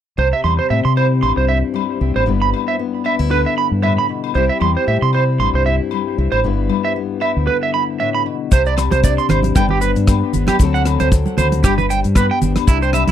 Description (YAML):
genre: highlife guitar band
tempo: 115 BPM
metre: 4/4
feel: swing 55% on 16ths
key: C major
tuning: A4 = 440 Hz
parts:
  - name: picked steel-string acoustic guitar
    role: accompaniment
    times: 0.2-13.1 s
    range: G2 to B4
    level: -21 LUFS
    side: left 9 dB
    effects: none
  - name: electric guitar at the edge of break-up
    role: arpeggios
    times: 0.2-13.1 s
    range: E4 to C6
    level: -19 LUFS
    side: right 7 dB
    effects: tape echo
  - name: deep dub fingered electric bass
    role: bass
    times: 0.2-13.1 s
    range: G1 to C3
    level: -18 LUFS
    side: equal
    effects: none
  - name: agogo bells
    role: percussion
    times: 0.5-13.1 s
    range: none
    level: -26 LUFS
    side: left 25 dB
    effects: none
  - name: damped 70s drum kit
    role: drums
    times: 8.5-13.1 s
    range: hi-hat, kick drum, rim click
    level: -16 LUFS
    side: equal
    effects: none
  - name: maracas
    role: percussion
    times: 8.5-13.1 s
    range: none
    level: -32 LUFS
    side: left 33 dB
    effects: none
  - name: congas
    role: percussion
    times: 8.9-13.1 s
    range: none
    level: -21 LUFS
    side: right 5 dB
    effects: none
room: light reverb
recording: dry, close 1970s-style studio recording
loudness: -14 LUFS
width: side -10 dB against mid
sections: 0.2-8.5 A section; 8.5-13.1 B section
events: none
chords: 0.2 C; 2.3 G6; 4.4 C; 6.4 G6; 8.5 Cadd9; 9.6 G; 10.6 D7; 11.6 G